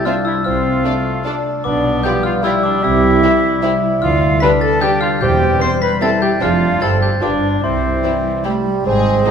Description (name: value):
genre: cinematic, playful, whimsical film cue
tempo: 151 BPM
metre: 3/4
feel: straight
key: C major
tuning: A4 = 439 Hz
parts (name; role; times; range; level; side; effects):
- glockenspiel with soft plastic mallets; melody; 0.0-8.4 s; C6 to C7; -22 LUFS; left 4 dB; none
- mellow cor anglais; second line; 0.0-9.3 s; C4 to C5; -24 LUFS; right 2 dB; none
- warm bassoon; accompaniment; 0.0-9.3 s; G3 to G4; -20 LUFS; right 2 dB; none
- mellow French horn section; sustained chords; 0.0-9.3 s; C4 to C5; -21 LUFS; left 1 dB; none
- concert harp; arpeggios; 0.0-9.3 s; E2 to D5; -22 LUFS; left 8 dB; none
- dark studio violin section; melody; 0.1-9.3 s; Ab4 to E5; -30 LUFS; left 4 dB; none
- dark studio violin section; second line; 0.1-9.3 s; G4 to C5; -31 LUFS; left 2 dB; none
- silver concert flute; second line; 0.1-9.3 s; C5 to C6; -24 LUFS; left 1 dB; none
- warm studio viola section; accompaniment; 0.1-9.3 s; C4 to Ab4; -28 LUFS; right 1 dB; none
- dark studio double bass section; bass; 0.5-9.2 s; E1 to D2; -23 LUFS; right 3 dB; none
- warm studio cello section; bass; 0.5-9.2 s; E2 to A3; -22 LUFS; right 2 dB; none
- warm clarinet; second line; 8.9-9.3 s; Ab4; -25 LUFS; right 1 dB; none
room: wet scoring stage reverb, RT60 2.0 s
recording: minimal, uncompressed stereo recording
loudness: -13 LUFS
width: side -7 dB against mid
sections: 0.0-8.9 A section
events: none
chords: 0.5 Dm7/C; 1.7 G7/B; 2.8 C; 4.0 G7/D; 5.2 C/E; 6.4 Dm7b5/F; 6.8 C/G; 7.2 G7; 7.6 C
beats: 0.06 | 0.46 0.86 1.26 | 1.65 2.05 2.44 | 2.84 3.23 3.63 | 4.02 4.42 4.82 | 5.21 5.61 6.01 | 6.41 6.81 7.21 | 7.63 8.04 8.45 | 8.86 9.26